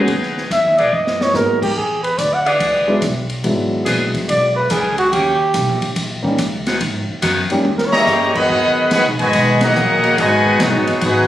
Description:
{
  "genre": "jazz, big band swing",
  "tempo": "143 BPM",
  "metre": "4/4",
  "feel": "swing 66% on 8ths",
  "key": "G# minor",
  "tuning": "A4 = 442 Hz",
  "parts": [
    { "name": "warm upright piano", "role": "accompaniment", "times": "0.0-7.6 s", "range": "F#3 to G4", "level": "-19 LUFS", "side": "left 1 dB", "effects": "none" },
    { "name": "bright saxophone section", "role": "sustained chords", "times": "0.0-11.3 s", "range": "D#3 to A#4", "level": "-22 LUFS", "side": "left 1 dB", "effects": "none" },
    { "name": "upright bass", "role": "bass", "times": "0.0-11.3 s", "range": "F#1 to G#2", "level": "-23 LUFS", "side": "equal", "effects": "none" },
    { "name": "open jazz drum kit", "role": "drums", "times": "0.1-11.2 s", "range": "crash cymbal, hi-hat, kick drum, ride cymbal, snare drum, toms", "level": "-24 LUFS", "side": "equal", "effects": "none" },
    { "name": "trumpet with bucket mute", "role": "melody", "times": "0.5-8.4 s", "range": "F#4 to F#5", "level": "-16 LUFS", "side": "right 1 dB", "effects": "none" },
    { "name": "clear trumpet section", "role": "melody", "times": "7.9-11.3 s", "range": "B3 to B5", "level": "-15 LUFS", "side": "left 1 dB", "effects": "none" },
    { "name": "bright trombone section", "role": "second line", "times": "7.9-11.3 s", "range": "B2 to F#4", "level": "-18 LUFS", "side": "equal", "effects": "none" }
  ],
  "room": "light reverb",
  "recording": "recorded on a phone in the room, studio reverb",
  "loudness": "-14 LUFS",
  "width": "side -13 dB against mid",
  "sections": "0.0-8.5 A section; 8.5-11.3 B section",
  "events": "muted trumpet solo 0.0-8.5; drum fill 0.9-1.3, 7.7-8.1; band accent 9.5",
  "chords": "0.0 G#m7; 1.8 E7; 5.1 D#7; 6.8 G#m7; 7.7 D#7; 8.5 G#m7"
}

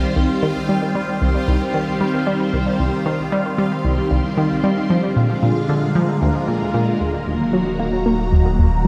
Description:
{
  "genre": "ambient, sequencer-driven space music",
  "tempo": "114 BPM",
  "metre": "4/4",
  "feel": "straight",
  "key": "C minor",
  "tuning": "A4 = 438 Hz",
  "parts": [
    { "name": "phased string machine", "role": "sustained chords", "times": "0.0-8.9 s", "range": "D3 to C5", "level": "-23 LUFS", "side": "equal", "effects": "ensemble chorus, phaser, shimmer reverb" },
    { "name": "analog pluck", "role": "riff", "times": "0.0-8.9 s", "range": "C2 to Bb3", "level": "-21 LUFS", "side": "equal", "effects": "chorus, tape echo" },
    { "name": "bubbling stepped-filter texture", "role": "texture", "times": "0.0-7.0 s", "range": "F4 to F5", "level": "-32 LUFS", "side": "equal", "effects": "chorus, built-in reverb, shimmer reverb" },
    { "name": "thumb-piano-like synth pluck", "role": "arpeggios", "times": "7.0-8.9 s", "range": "none", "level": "barely audible", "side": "none", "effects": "none" },
    { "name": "warm sub bass", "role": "bass", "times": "7.0-8.9 s", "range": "Eb1", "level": "-26 LUFS", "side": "equal", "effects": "none" }
  ],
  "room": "wet cathedral reverb, RT60 5.3 s",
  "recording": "in a vast, echoing space",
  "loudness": "-19 LUFS",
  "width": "mono",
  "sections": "0.0-7.0 A section; 7.0-8.9 B section",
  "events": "filter sweep on synth arpeggio sound 0.0-7.0, 7.0-8.9",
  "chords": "0.0 Cm; 4.9 Bb7; 7.0 Ebm"
}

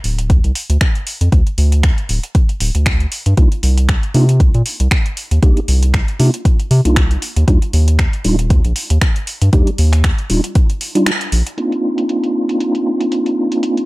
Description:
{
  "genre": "deep house",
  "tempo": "117 BPM",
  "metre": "4/4",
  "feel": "swing 56% on 16ths",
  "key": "C minor",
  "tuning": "A4 = 439 Hz",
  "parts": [
    { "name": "round analog bass", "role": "bass", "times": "0.0-11.4 s", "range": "D1 to C3", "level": "-13 LUFS", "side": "equal", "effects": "none" },
    { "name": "deep house drum kit", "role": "drums", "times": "0.0-13.9 s", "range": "finger snaps, hi-hat", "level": "-22 LUFS", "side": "equal", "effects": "low-pass filter on hats, low-pass filter on snare" },
    { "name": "electronic kick drum", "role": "drums", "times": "0.3-10.7 s", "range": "none", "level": "-13 LUFS", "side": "equal", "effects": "none" },
    { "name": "mellow tonewheel organ", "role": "stabs", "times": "3.4-13.9 s", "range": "G3 to G4", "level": "-17 LUFS", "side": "right 1 dB", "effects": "chorus vibrato, fast rotary speaker, sidechain pumping, low-pass filter, dub echo" }
  ],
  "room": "digital ambience",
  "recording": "none",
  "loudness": "-12 LUFS",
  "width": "side -21 dB against mid",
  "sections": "0.0-11.6 A section; 11.6-13.9 B section",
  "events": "break 11.1-11.6; band accent 11.1; filter sweep on tonewheel organ 11.6-13.9",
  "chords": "0.0 N.C.; 3.4 Cm11; 7.2 Ebmaj7; 11.6 Cm11"
}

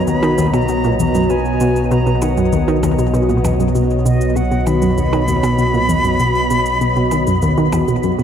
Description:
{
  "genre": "ambient, sequencer-driven space music",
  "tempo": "98 BPM",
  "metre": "4/4",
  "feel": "straight",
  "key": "B major",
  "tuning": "A4 = 440 Hz",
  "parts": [
    { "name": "bright concert flute", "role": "melody", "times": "0.0-8.0 s", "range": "D#5 to B5", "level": "-22 LUFS", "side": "equal", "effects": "ping-pong delay" },
    { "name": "sweeping resonant pad", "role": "sustained chords", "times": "0.0-8.2 s", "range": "B3 to D#5", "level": "-19 LUFS", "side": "equal", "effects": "chorus" },
    { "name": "analog pluck", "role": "riff", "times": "0.0-8.2 s", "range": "D#2 to D#3", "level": "-17 LUFS", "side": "equal", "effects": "chorus, ping-pong delay" },
    { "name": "analog drone", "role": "bass", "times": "0.0-8.2 s", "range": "B1", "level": "-20 LUFS", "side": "equal", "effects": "chorus" },
    { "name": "shaker and percussion blips", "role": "percussion", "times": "0.1-8.2 s", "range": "none", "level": "-33 LUFS", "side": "right 2 dB", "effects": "ping-pong delay" }
  ],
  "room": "wet cathedral reverb, RT60 7.5 s",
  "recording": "in a vast, echoing space",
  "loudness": "-13 LUFS",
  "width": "side -8 dB against mid",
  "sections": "0.0-8.2 A section",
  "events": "none",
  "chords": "0.0 B"
}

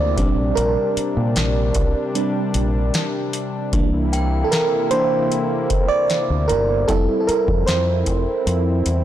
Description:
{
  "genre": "contemporary R&B",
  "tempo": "76 BPM",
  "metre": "4/4",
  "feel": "straight",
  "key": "unclear",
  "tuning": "A4 = 440 Hz",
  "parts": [
    { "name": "FM electric piano with auto-pan", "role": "accompaniment", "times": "0.0-9.0 s", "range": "E3 to D5", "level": "-20 LUFS", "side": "right 3 dB", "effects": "none" },
    { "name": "warm analog pad", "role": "sustained chords", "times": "0.0-9.0 s", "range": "C3 to E4", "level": "-26 LUFS", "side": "left 3 dB", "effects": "chorus, sidechain pumping" },
    { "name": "deep dub fingered electric bass", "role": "bass", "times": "0.0-9.0 s", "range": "F1 to Bb2", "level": "-21 LUFS", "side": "equal", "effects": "none" },
    { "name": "booming analog drum machine", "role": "drums", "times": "0.2-9.0 s", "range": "hi-hat, kick drum, snare drum", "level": "-23 LUFS", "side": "equal", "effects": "none" },
    { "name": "synth chime", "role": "texture", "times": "4.1-6.0 s", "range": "G5", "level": "-30 LUFS", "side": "left 4 dB", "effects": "ensemble chorus, tremolo, ping-pong delay" }
  ],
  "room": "light reverb, digital ambience",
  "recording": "blown-out, overdriven recording, overdrive",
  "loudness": "-17 LUFS",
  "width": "side -12 dB against mid",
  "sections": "0.0-9.0 A section",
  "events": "FM electric piano solo 0.0-9.0",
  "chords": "0.2 Bb69; 3.7 C7; 6.9 F5"
}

